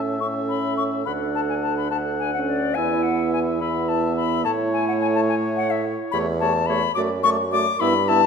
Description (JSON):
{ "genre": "quick classical-period movement for wind quintet", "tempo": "71 BPM (dotted quarters)", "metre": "6/8", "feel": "rubato", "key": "A major", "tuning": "A4 = 442 Hz", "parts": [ { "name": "warm oboe", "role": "second line", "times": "0.0-8.2 s", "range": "C#5 to F#5", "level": "-29 LUFS", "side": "left 3 dB", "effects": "none" }, { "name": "clear French horn", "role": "accompaniment", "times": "0.0-8.2 s", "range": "A3 to D4", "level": "-28 LUFS", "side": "right 1 dB", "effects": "none" }, { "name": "dark clarinet", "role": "accompaniment", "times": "0.0-8.2 s", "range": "E4 to A4", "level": "-27 LUFS", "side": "right 6 dB", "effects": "none" }, { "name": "warm bassoon", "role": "bass", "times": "0.0-8.3 s", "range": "D2 to A2", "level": "-27 LUFS", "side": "right 2 dB", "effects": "none" }, { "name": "silver concert flute", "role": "melody", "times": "0.2-8.3 s", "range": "D5 to D6", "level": "-24 LUFS", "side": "left 7 dB", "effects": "none" } ], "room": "wet recital hall reverb, RT60 1.5 s", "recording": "none", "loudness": "-20 LUFS", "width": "side -6 dB against mid", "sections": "0.0-8.3 A section", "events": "none", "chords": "0.0 A; 1.1 D; 2.8 E5; 4.5 A; 6.1 A7/E; 7.0 D/F#" }